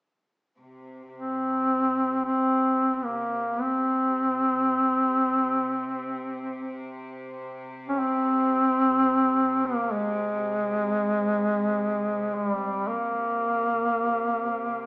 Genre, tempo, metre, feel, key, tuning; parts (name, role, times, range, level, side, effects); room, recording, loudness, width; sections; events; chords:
caucasian folk, Caucasian lament; free time; A4 = 440 Hz
rich chamber string section; drone; 0.6-14.9 s; C3; -40 LUFS; equal
mellow duduk; melody; 1.1-14.9 s; G3 to Db4; -23 LUFS; equal
moderate large studio reverb, RT60 1.2 s; band playing live in one room, small speaker sound; -22 LUFS; side -34 dB against mid
0.6-14.9 A section